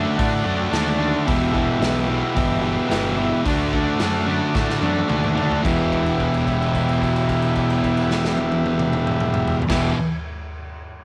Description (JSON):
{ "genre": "garage rock duo or trio", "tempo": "110 BPM", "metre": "4/4", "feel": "straight", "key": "E minor", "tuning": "A4 = 440 Hz", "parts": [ { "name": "combo organ", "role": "sustained chords", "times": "0.0-9.9 s", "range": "F#4 to A5", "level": "-29 LUFS", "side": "equal", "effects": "none" }, { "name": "thick fuzz guitar", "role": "riff", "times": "0.0-9.9 s", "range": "E2 to D4", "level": "-23 LUFS", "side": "equal", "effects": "distortion" }, { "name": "fuzz fingered electric bass", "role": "bass", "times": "0.0-9.9 s", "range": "E1 to A2", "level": "-29 LUFS", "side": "equal", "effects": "overdrive" }, { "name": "raw garage drum kit", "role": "drums", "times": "0.2-9.8 s", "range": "crash cymbal, hi-hat, kick drum, snare drum, toms", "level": "-29 LUFS", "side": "equal", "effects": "none" } ], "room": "moderate spring reverb, RT60 1.5 s, small room ambience", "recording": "none", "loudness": "-21 LUFS", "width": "mono", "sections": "0.0-5.6 A section; 5.6-10.0 B section", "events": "transistor combo organ fill 0.0-1.3; drum fill 4.5-5.6; held note 5.6-9.7", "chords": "0.0 D; 1.3 Em; 3.5 D; 5.6 Em" }